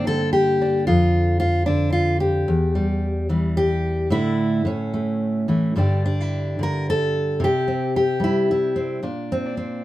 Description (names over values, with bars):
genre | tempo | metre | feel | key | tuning
folk, solo fingerstyle acoustic guitar | 111 BPM | 3/4 | rubato | D minor | A4 = 439 Hz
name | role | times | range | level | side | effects
fingerpicked steel-string acoustic guitar | solo | 0.0-9.8 s | E2 to Bb4 | -19 LUFS | equal | none
room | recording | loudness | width
light reverb | band playing live in one room | -19 LUFS | side -15 dB against mid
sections
0.0-9.8 A section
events
none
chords
0.0 Gm; 0.9 Dm/F; 2.5 Em; 4.1 Asus4; 4.6 A; 5.8 G5; 7.4 C; 9.0 Bbadd9